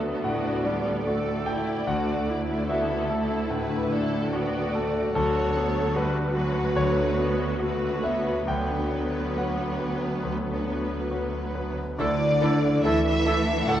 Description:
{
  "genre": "cinematic",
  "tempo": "67-75 BPM",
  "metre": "4/4",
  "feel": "rubato",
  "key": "D major",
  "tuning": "A4 = 441 Hz",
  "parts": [
    { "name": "clear studio violin section", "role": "melody", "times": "0.0-13.8 s", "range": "A4 to F#5", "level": "-32 LUFS", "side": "left 1 dB", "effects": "none" },
    { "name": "bright concert grand piano", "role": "accompaniment", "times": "0.0-13.8 s", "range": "D2 to G5", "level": "-29 LUFS", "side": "left 1 dB", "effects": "none" },
    { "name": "rich symphonic viola section", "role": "accompaniment", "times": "0.0-13.8 s", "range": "F#3 to A4", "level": "-30 LUFS", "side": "right 1 dB", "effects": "none" },
    { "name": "concert harp", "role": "arpeggios", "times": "0.0-13.8 s", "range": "D3 to A5", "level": "-33 LUFS", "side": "left 5 dB", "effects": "none" },
    { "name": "rich symphonic cello section", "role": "bass", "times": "0.0-13.8 s", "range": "D2 to F#3", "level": "-30 LUFS", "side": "right 3 dB", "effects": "none" },
    { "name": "bright clarinet", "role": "second line", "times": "12.0-13.8 s", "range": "E4", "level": "-35 LUFS", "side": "left 2 dB", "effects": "none" },
    { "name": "mellow hollow small flute group", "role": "second line", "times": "12.0-13.8 s", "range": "D5 to F#5", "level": "-31 LUFS", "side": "right 4 dB", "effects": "none" },
    { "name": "rich studio violin section", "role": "second line", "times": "12.0-13.8 s", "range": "E4 to A4", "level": "-35 LUFS", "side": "left 2 dB", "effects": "none" },
    { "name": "warm oboe", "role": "second line", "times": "12.0-13.8 s", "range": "A4", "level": "-32 LUFS", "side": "right 1 dB", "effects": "none" },
    { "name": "mellow French horn section", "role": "sustained chords", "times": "12.0-13.8 s", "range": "A3 to E4", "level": "-32 LUFS", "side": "left 2 dB", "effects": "none" },
    { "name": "rich symphonic double bass section", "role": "bass", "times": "12.0-13.8 s", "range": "D2", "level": "-29 LUFS", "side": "right 3 dB", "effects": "none" }
  ],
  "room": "moderate scoring stage reverb, RT60 1.5 s",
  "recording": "worn, warbling old tape, cassette tape, warbly pitch drift",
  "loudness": "-23 LUFS",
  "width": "side -11 dB against mid",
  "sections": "0.0-12.0 A section; 12.0-13.8 A section",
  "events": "none",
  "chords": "0.0 Dadd9; 5.1 Bsus2/D; 12.0 Dsus2"
}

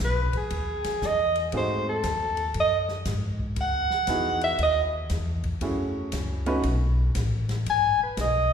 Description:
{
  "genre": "jazz, small-group swing and bop",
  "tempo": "117 BPM",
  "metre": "4/4",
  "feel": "swing 66% on 8ths",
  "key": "unclear",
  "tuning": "A4 = 440 Hz",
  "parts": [
    { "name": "mellow soprano saxophone", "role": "melody", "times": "0.0-8.5 s", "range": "G#4 to G#5", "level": "-24 LUFS", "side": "equal", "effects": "slapback echo" },
    { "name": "upright bass", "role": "bass", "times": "0.0-8.5 s", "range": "G#1 to G#2", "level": "-28 LUFS", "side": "left 1 dB", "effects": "none" },
    { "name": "open jazz drum kit", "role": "drums", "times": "0.0-8.3 s", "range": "hi-hat, kick drum, ride cymbal, snare drum", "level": "-36 LUFS", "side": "left 1 dB", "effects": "none" },
    { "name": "clear upright piano", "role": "accompaniment", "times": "1.5-6.6 s", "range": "A3 to B4", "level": "-30 LUFS", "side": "right 2 dB", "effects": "slapback echo" }
  ],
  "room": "light reverb",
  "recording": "live gig heard through the venue's PA, recital hall reverb",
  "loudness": "-23 LUFS",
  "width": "side -7 dB against mid",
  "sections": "0.0-8.5 A section",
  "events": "soprano saxophone solo 0.0-8.5",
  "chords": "0.0 Emaj7; 1.5 G#7b9; 3.6 C#m11; 5.6 F#m9; 6.6 Asus2; 7.7 G#m"
}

